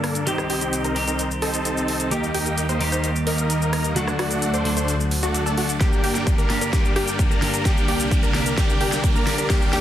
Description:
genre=EDM, festival progressive house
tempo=130 BPM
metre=4/4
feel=straight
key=unclear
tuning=A4 = 439 Hz
part: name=twelve-string electric guitar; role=accompaniment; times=0.0-9.8 s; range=D3 to G4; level=-27 LUFS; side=left 1 dB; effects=sidechain pumping, tape echo
part: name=lush unison pad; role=sustained chords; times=0.0-9.8 s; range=C2 to G4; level=-29 LUFS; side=equal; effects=chorus, sidechain pumping
part: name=wide unison pluck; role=arpeggios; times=0.0-9.8 s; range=F#4 to C5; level=-30 LUFS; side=equal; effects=sidechain pumping, tape echo
part: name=big supersaw lead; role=riff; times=0.0-9.8 s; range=A3 to C5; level=-25 LUFS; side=equal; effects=sidechain pumping, low-pass filter, tape echo
part: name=big-room dance drum kit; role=drums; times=0.0-9.8 s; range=hi-hat, rim click, shaker, snare drum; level=-28 LUFS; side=equal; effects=overdrive, high-pass filter on snare, small room ambience, high-pass filter on toms, high-pass filter on hats, high-pass filter on perc
part: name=riser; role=sound effects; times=3.2-9.8 s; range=none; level=-36 LUFS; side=equal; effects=none
part: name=electronic kick drum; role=drums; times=5.8-9.6 s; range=none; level=-20 LUFS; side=equal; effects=overdrive, small room ambience
room=moderate digital room reverb, RT60 1.0 s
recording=dense, heavily limited modern master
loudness=-19 LUFS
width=side -11 dB against mid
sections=0.0-9.8 A section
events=build-up 0.0-9.8; filter sweep on supersaw synth 0.0-9.8; filter sweep on synth pluck 0.0-9.8; filter sweep on analog synth pad 0.0-9.8; drum fill 5.8-9.8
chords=0.3 Cm; 2.1 Eb; 4.0 D; 5.8 Gm; 7.7 C5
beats=| 0.27 0.73 1.19 1.65 | 2.11 2.58 3.04 3.50 | 3.96 4.42 4.88 5.34 | 5.81 6.27 6.73 7.19 | 7.65 8.11 8.58 9.04 | 9.50

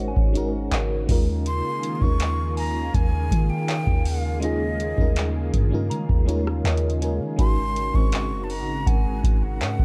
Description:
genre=contemporary R&B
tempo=81 BPM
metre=4/4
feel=straight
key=unclear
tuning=A4 = 444 Hz
part: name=FM electric piano with tremolo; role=accompaniment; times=0.0-9.8 s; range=G3 to Ab5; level=-31 LUFS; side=equal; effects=phaser
part: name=lush unison pad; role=sustained chords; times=0.0-9.8 s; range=Db3 to Ab4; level=-36 LUFS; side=equal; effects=chorus, phaser, sidechain pumping
part: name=soft 808-style bass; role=bass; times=0.0-9.8 s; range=Gb1 to Eb3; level=-28 LUFS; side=equal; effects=none
part: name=soft synth bell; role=texture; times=0.0-9.8 s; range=Eb5 to Bb5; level=-44 LUFS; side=equal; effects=chorus, digital delay
part: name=booming analog drum machine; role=drums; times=0.2-9.8 s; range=handclaps, hi-hat, kick drum, rim click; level=-24 LUFS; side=equal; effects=none
part: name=breathy jazz flute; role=melody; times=1.5-9.8 s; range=Eb5 to Db6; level=-33 LUFS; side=equal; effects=digital delay
room=little or no reverb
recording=dark, warm production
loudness=-23 LUFS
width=mono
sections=0.0-9.8 A section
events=FM electric piano fill 5.9-7.4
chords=0.0 Ab9sus4; 1.1 Eb9sus4; 7.4 Ab9sus4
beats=0.72 | 1.46 2.20 2.94 3.68 | 4.42 5.17 5.91 6.65 | 7.39 8.13 8.87 9.61

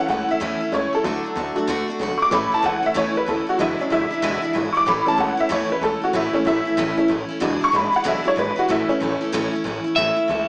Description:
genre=rockabilly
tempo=188 BPM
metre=4/4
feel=swing 64% on 8ths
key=A major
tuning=A4 = 440 Hz
part: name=honky-tonk upright piano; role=accompaniment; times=0.0-9.3 s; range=E3 to D6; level=-23 LUFS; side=equal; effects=none
part: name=picked steel-string acoustic guitar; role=accompaniment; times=0.0-10.5 s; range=E2 to F#4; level=-27 LUFS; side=equal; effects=none
part: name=upright bass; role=bass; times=0.1-10.4 s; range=E1 to E2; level=-31 LUFS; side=equal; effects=none
part: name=electric guitar at the edge of break-up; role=melody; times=10.0-10.5 s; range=E5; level=-21 LUFS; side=equal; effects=tape echo
room=moderate echo chamber reverb, RT60 1.7 s, studio reverb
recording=small speaker sound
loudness=-21 LUFS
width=mono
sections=0.0-10.0 A section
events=honky-tonk piano solo 0.0-10.0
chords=0.0 A; 1.0 D; 2.3 A; 3.6 E7; 4.9 A; 7.4 E7; 8.7 A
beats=0.09 0.41 0.72 | 1.04 1.36 1.68 2.00 | 2.32 2.63 2.95 3.27 | 3.59 3.91 4.23 4.54 | 4.86 5.18 5.50 5.82 | 6.14 6.46 6.77 7.09 | 7.41 7.73 8.05 8.37 | 8.69 9.01 9.32 9.64 | 9.96 10.28

